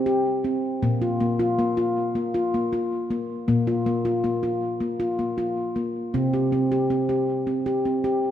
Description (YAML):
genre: world meditative, meditative tuned percussion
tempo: 158 BPM (eighths)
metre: 7/8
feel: straight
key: unclear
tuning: A4 = 444 Hz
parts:
  - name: handpan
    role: solo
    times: 0.0-8.3 s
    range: Bb2 to G4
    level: -22 LUFS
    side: left 1 dB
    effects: diffuse ambient delay
room: wet echo chamber reverb, RT60 2.0 s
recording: none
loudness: -22 LUFS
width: side -10 dB against mid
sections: 0.0-6.1 A section; 6.1-8.3 B section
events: none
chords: 0.0 C5; 0.8 Bb5; 6.1 C5